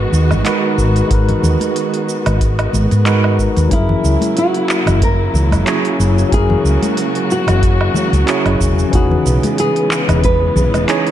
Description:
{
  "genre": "sunset chillout",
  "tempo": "92 BPM",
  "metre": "4/4",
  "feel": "swing 55% on 16ths",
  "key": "unclear",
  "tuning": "A4 = 440 Hz",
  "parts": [
    { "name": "bright tine electric piano", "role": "accompaniment", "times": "0.0-11.1 s", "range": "E3 to C#5", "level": "-19 LUFS", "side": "moving between left 6 dB and right 7 dB", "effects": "auto-pan, ping-pong delay" },
    { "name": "warm studio string section", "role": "sustained chords", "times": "0.0-11.1 s", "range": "C#3 to F#4", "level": "-21 LUFS", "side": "equal", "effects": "none" },
    { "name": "woody fretless electric bass", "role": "bass", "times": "0.0-10.8 s", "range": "E1 to G#2", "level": "-14 LUFS", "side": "equal", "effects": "none" },
    { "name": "smooth R&B drum kit", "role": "drums", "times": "0.1-11.1 s", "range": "handclaps, hi-hat, shaker, woodblock", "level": "-22 LUFS", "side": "right 2 dB", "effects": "none" },
    { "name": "congas", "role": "percussion", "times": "0.3-10.9 s", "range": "none", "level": "-23 LUFS", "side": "left 3 dB", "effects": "none" },
    { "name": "electronic kick drum", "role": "drums", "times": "1.1-10.4 s", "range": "none", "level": "-18 LUFS", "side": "equal", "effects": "none" },
    { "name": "nylon-string guitar", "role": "melody", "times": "3.7-11.1 s", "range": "E4 to B4", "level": "-20 LUFS", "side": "equal", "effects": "tape echo" }
  ],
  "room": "light reverb, digital ambience",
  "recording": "dark, warm production",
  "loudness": "-12 LUFS",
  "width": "side -11 dB against mid",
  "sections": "0.0-3.7 A section; 3.7-11.1 B section",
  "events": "none",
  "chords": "0.0 G#m7; 3.7 F#7; 8.9 C#m7/E"
}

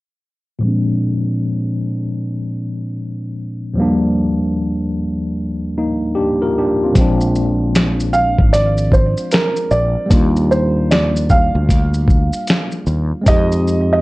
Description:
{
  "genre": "lo-fi hip hop",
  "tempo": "76 BPM",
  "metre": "4/4",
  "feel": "swing 64% on 16ths",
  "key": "unclear",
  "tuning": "A4 = 440 Hz",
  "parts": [
    { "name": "tine electric piano", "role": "accompaniment", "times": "0.6-14.0 s", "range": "Eb2 to Bb4", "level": "-18 LUFS", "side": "left 1 dB", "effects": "medium stereo tremolo, cassette tape, low-pass filter" },
    { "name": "fretless electric bass", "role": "bass", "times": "7.0-14.0 s", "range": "Ab1 to F2", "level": "-17 LUFS", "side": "equal", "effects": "none" },
    { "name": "dusty soul sampler-style drum kit", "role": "drums", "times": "7.0-13.9 s", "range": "hi-hat, kick drum, shaker, snare drum", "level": "-15 LUFS", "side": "equal", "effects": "vintage 12-bit sampler grit" },
    { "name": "felt-muted upright piano", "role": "melody", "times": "8.1-14.0 s", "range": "Bb4 to F5", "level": "-18 LUFS", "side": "right 2 dB", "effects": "none" }
  ],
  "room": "moderate studio reverb, RT60 0.7 s",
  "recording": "worn, warbling old tape, cassette tape, warbly pitch drift",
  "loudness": "-14 LUFS",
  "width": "side -20 dB against mid",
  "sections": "0.6-6.9 A section; 6.9-14.0 B section",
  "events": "filter sweep on tine electric piano 0.6-6.9",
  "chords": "0.6 Bb7; 3.8 Ebmaj9; 6.9 Bb7; 10.1 Ebmaj9; 13.3 Fm9"
}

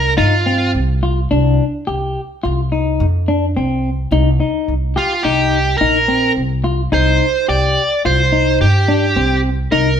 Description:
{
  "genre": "progressive instrumental, progressive",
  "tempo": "107 BPM",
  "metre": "5/4",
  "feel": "straight",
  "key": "C minor",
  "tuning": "A4 = 440 Hz",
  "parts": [
    { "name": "smooth overdriven lead guitar", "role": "melody", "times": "0.0-0.7, 5.0-10.0 s", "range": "F4 to D5", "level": "-16 LUFS", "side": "right 2 dB", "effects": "none" },
    { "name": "upright bass", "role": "bass", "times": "0.0-10.0 s", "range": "Bb1 to G2", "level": "-17 LUFS", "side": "equal", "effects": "none" },
    { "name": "clean electric guitar", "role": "arpeggios", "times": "0.2-9.9 s", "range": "C4 to G4", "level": "-19 LUFS", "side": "left 3 dB", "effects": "none" }
  ],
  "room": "moderate stone room reverb, RT60 1.1 s",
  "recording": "band playing live in one room",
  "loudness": "-13 LUFS",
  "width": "side -8 dB against mid",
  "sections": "0.0-10.0 A section",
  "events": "none",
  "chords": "0.0 Cm; 4.1 Eb5/C; 6.9 Cm"
}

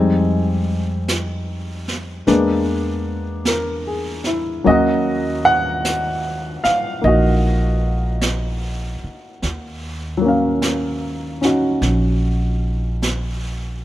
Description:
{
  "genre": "jazz ballad",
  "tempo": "50 BPM",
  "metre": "4/4",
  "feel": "swing 67% on 8ths",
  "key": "Eb minor",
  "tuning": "A4 = 441 Hz",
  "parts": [
    { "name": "warm baby grand piano", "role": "accompaniment", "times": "0.0-13.8 s", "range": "Gb3 to Ab5", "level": "-18 LUFS", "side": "left 1 dB", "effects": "none" },
    { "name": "upright bass", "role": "bass", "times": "0.0-13.8 s", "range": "Bb1 to F2", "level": "-22 LUFS", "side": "equal", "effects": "none" },
    { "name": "vintage brush drum kit", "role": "drums", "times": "1.1-13.8 s", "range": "brushed snare drum, hi-hat, snare drum", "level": "-27 LUFS", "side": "right 2 dB", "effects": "none" }
  ],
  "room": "light reverb",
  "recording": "none",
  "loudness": "-17 LUFS",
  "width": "side -14 dB against mid",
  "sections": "0.0-13.8 A section",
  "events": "none",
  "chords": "0.0 Fm7; 2.3 E7#11; 4.7 Ebm7"
}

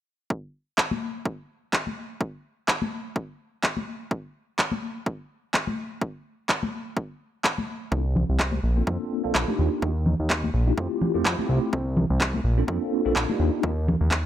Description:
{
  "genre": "filtered disco house",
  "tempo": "126 BPM",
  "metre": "4/4",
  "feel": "swing 56% on 16ths",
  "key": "unclear",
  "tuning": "A4 = 442 Hz",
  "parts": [
    { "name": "electronic kick drum", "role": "drums", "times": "0.3-14.2 s", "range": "none", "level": "-30 LUFS", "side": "equal", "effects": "high-pass filter on kick" },
    { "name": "egg shaker and congas", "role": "percussion", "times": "0.3-14.2 s", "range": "none", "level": "-29 LUFS", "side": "left 2 dB", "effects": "sidechain pumping on perc, low-pass filter on perc" },
    { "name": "electronic handclaps", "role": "drums", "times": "0.8-14.2 s", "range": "none", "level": "-26 LUFS", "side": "equal", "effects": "none" },
    { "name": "bell-like tine electric piano", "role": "accompaniment", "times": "7.9-13.7 s", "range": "A3 to A4", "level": "-26 LUFS", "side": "equal", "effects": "fast stereo tremolo, phaser, sidechain pumping, low-pass filter" },
    { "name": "fat analog bass", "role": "bass", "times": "7.9-14.3 s", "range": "Bb1 to F2", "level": "-24 LUFS", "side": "equal", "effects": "tube saturation, sidechain pumping, low-pass filter" }
  ],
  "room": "light reverb, digital ambience",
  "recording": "none",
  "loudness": "-24 LUFS",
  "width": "side -11 dB against mid",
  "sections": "0.3-14.3 A section",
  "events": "filter sweep 0.3-14.3",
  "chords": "0.3 N.C.; 8.6 Bbmaj9; 9.6 Ebmaj9; 10.8 Fmaj9; 11.7 N.C.; 12.4 Bbmaj9; 13.4 Ebmaj9"
}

